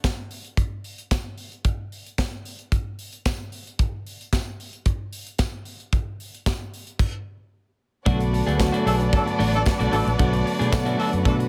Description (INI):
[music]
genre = disco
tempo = 112 BPM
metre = 4/4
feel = straight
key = B minor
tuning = A4 = 437 Hz
[part]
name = modern studio drum kit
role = drums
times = 0.0-11.5 s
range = crash cymbal, hi-hat, kick drum, snare drum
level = -28 LUFS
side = equal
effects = none
[part]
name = tambourine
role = percussion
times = 0.0-10.9 s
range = none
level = -42 LUFS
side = equal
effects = none
[part]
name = warm studio violin section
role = second line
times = 8.1-11.5 s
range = D4 to D5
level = -31 LUFS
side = equal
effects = none
[part]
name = electric guitar at the edge of break-up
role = accompaniment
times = 8.1-11.4 s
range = A3 to G#4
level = -32 LUFS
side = equal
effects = spring reverb
[part]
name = tine electric piano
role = accompaniment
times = 8.1-11.5 s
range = C#3 to F#4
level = -28 LUFS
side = equal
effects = none
[part]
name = clear chamber string section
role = sustained chords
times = 8.1-11.5 s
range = F#4 to F#5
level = -35 LUFS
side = equal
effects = none
[part]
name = fingered electric bass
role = bass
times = 8.1-11.5 s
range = A1 to B2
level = -26 LUFS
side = equal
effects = none
[part]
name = warm horn section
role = stabs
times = 8.9-11.3 s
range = F#3 to A4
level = -30 LUFS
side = equal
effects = none
[sound]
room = small room ambience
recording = none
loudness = -24 LUFS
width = mono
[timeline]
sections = 0.0-8.1 A section; 8.1-11.5 B section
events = none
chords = 0.0 N.C.; 8.1 Bm7